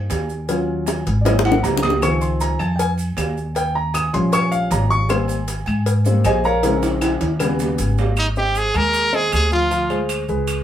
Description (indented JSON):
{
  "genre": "Afro-Cuban jazz",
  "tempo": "156 BPM",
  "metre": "4/4",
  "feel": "straight",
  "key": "Ab major",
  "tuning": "A4 = 443 Hz",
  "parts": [
    { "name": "warm grand piano", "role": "accompaniment", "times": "0.0-10.6 s", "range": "Db3 to Eb6", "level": "-21 LUFS", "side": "left 1 dB", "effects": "none" },
    { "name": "upright bass", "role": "bass", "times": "0.0-10.6 s", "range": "Ab1 to Ab2", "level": "-21 LUFS", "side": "equal", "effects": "none" },
    { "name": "cowbell and bongos", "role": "percussion", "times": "0.1-8.0 s", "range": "none", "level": "-25 LUFS", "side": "left 3 dB", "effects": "none" },
    { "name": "maracas", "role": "percussion", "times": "0.1-10.6 s", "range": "none", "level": "-35 LUFS", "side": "right 5 dB", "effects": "none" },
    { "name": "timbales and agogo bells", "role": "percussion", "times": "0.1-10.6 s", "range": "none", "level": "-26 LUFS", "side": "right 2 dB", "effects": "none" },
    { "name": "claves", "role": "percussion", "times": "2.0-10.6 s", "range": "none", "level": "-32 LUFS", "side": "left 2 dB", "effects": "none" },
    { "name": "brilliant trumpet", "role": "melody", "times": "8.2-10.1 s", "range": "Eb4 to Bb4", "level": "-18 LUFS", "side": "right 1 dB", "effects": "none" }
  ],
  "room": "moderate studio ambience, RT60 0.5 s",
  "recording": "band playing live in one room",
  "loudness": "-17 LUFS",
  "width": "side -10 dB against mid",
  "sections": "0.0-8.2 A section; 8.2-10.6 B section",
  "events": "grand piano solo 0.0-8.2; drum fill 0.9-2.0, 6.6-8.2",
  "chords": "0.5 Ebm9; 1.3 Ab9; 2.0 Dbmaj9; 3.6 Eb9; 6.6 Bbm7; 7.4 Ebaug7; 8.2 Abadd9; 9.7 Dm7b5"
}